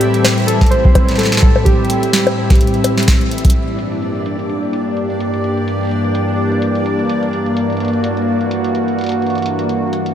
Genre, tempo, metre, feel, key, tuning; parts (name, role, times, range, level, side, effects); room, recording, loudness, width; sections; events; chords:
IDM; 127 BPM; 4/4; swing 56% on 16ths; G melodic minor; A4 = 440 Hz
warbly lo-fi synth keys; melody; 0.0-3.0 s; G4 to C5; -22 LUFS; equal; chorus, vintage 12-bit sampler grit, diffuse ambient delay
warbly tape-like pad; sustained chords; 0.0-10.1 s; G2 to G4; -17 LUFS; equal; chorus, built-in reverb, sidechain pumping
booming analog drum machine; drums; 0.0-10.1 s; bongos, hi-hat, snare drum; -20 LUFS; left 1 dB; low-pass filter on hats, low-pass filter on perc, low-pass filter on snare, low-pass filter on room
bubbling stepped-filter texture; texture; 0.0-10.1 s; D4 to E5; -24 LUFS; equal; chorus, built-in reverb, sidechain pumping
electronic kick drum; drums; 0.6-3.5 s; -11 LUFS; equal
wet cathedral reverb, RT60 6.4 s; dreamy mix soaked in reverb; -13 LUFS; side -10 dB against mid
0.0-3.6 A section; 3.6-10.1 B section
drum fill 3.3
0.0 Am7; 3.6 Gm6